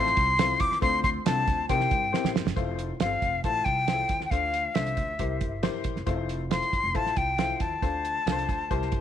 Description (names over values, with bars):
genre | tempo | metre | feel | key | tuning
uptempo 1960s-style soul | 137 BPM | 4/4 | straight | F major | A4 = 438 Hz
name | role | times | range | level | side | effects
breathy bright concert flute | melody | 0.0-9.0 s | E5 to D6 | -26 LUFS | left 2 dB | none
warm upright piano | accompaniment | 0.0-9.0 s | C4 to C5 | -33 LUFS | left 10 dB | none
upright bass | bass | 0.0-9.0 s | F1 to C3 | -33 LUFS | right 1 dB | tube saturation
cloth-damped thuddy drum kit | drums | 0.1-9.0 s | hi-hat, kick drum, snare drum | -30 LUFS | right 4 dB | none
room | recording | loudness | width
light reverb, studio ambience | 1960s-style stereo | -24 LUFS | side -10 dB against mid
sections
0.0-2.6 A section; 2.6-9.0 B section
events
drum fill 2.1-2.6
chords
0.0 Fmaj7; 0.8 Dm7; 1.7 C7; 2.6 Fmaj7; 4.3 Dm7; 5.2 C7; 6.1 Fmaj7; 7.8 Dm7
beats
0.39 | 0.82 1.26 1.69 2.13 | 2.56 3.00 3.44 3.88 | 4.31 4.75 5.19 5.63 | 6.07 6.51 6.95 7.39 | 7.83 8.27 8.70